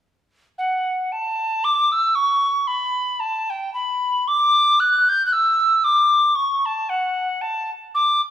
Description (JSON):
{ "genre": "celtic folk", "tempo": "114 BPM", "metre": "3/4", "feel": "swing 55% on 8ths", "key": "D major", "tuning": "A4 = 441 Hz", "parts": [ { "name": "wooden whistle", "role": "melody", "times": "0.6-8.2 s", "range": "F#5 to G6", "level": "-17 LUFS", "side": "equal", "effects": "none" } ], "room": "wet large studio reverb, RT60 1.3 s", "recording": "band playing live in one room", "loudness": "-17 LUFS", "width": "side -11 dB against mid", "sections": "0.6-8.3 A section", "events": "none", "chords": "none", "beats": "| 0.58 1.11 1.63 | 2.16 2.68 3.21 | 3.73 4.26 4.79 | 5.31 5.84 6.36 | 6.89 7.41 7.93" }